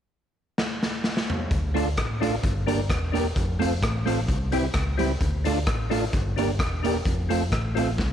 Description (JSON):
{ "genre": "ska", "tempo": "130 BPM", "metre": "4/4", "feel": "swing 53% on 8ths", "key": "D minor", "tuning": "A4 = 440 Hz", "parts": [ { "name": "raw garage drum kit", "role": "drums", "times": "0.6-8.1 s", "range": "hi-hat, kick drum, rim click, snare drum, toms", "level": "-26 LUFS", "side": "equal", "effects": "none" }, { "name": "fingered electric bass", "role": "bass", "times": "1.5-8.1 s", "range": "E1 to D2", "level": "-27 LUFS", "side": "equal", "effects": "none" }, { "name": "electric guitar at the edge of break-up", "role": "accompaniment", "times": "1.7-7.9 s", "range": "G3 to G4", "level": "-29 LUFS", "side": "right 11 dB", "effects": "none" }, { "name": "percussive tonewheel organ", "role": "stabs", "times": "1.7-7.9 s", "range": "C4 to Bb4", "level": "-30 LUFS", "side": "left 11 dB", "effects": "chorus vibrato, fast rotary speaker" } ], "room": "light reverb, studio reverb", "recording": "1960s-style stereo with parts hard left and right", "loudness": "-22 LUFS", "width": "side -9 dB against mid", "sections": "0.0-1.5 A section; 1.5-8.1 B section", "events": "drum fill 0.6-1.5", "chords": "0.0 N.C.; 1.5 Dm; 2.4 Gm; 3.4 F; 4.3 C; 5.2 Dm; 6.1 Gm; 7.1 F" }